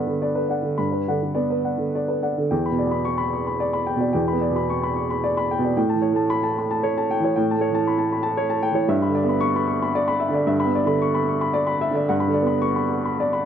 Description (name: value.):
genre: neoclassical minimalist piano.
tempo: 102-117 BPM.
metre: 3/4.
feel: rubato.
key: E dorian.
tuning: A4 = 440 Hz.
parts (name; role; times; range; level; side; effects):
warm upright piano; solo; 0.0-13.5 s; E2 to C#6; -20 LUFS; equal; none.
room: little or no reverb.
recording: dry, close 1970s-style studio recording.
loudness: -20 LUFS.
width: side -8 dB against mid.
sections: 0.0-2.5 A section; 2.5-13.5 A section.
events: none.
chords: 0.0 Gmaj7; 2.5 Em7; 5.8 A7; 8.9 Em7/G; 12.1 Gmaj7.